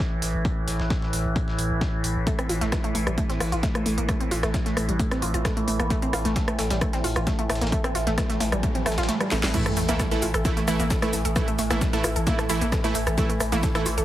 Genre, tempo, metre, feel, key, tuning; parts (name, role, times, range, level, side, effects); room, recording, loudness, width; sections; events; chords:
driving peak-time techno; 132 BPM; 4/4; straight; A4 = 440 Hz
overtone-sweeping drone; drone; 0.0-14.0 s; A2 to E3; -31 LUFS; equal; chorus, built-in reverb, sidechain pumping
saturated sub bass; bass; 0.2-14.0 s; A1; -28 LUFS; equal; tube saturation, sidechain pumping, low-pass filter
dusty soul sampler-style drum kit; drums; 0.2-14.0 s; hi-hat, snare drum; -38 LUFS; left 1 dB; high-pass filter on hats, high-pass filter on snare
techno drum kit; drums; 0.2-14.0 s; crash cymbal, hi-hat, rim click, shaker, snare drum; -30 LUFS; equal; sidechain pumping on hats, sidechain pumping on cymbals, sidechain pumping on perc
electronic kick drum; drums; 0.4-13.7 s; -26 LUFS; equal
wide unison pluck; riff; 2.3-14.0 s; G3 to A4; -28 LUFS; equal; overdrive, sidechain pumping, tape echo
riser and sub drop; sound effects; 8.0-11.4 s; -35 LUFS; right 2 dB
supersaw stab; stabs; 9.5-13.9 s; E3 to E4; -28 LUFS; right 3 dB; sidechain pumping, dub echo
moderate stone room reverb, RT60 1.1 s; heavily compressed radio sound; -22 LUFS; side -13 dB against mid
0.0-9.5 A section; 9.5-14.0 B section
kick drops out 9.1-9.5; drum fill 9.3; drop 9.5-14.0; impact 9.5-11.4
0.0 A5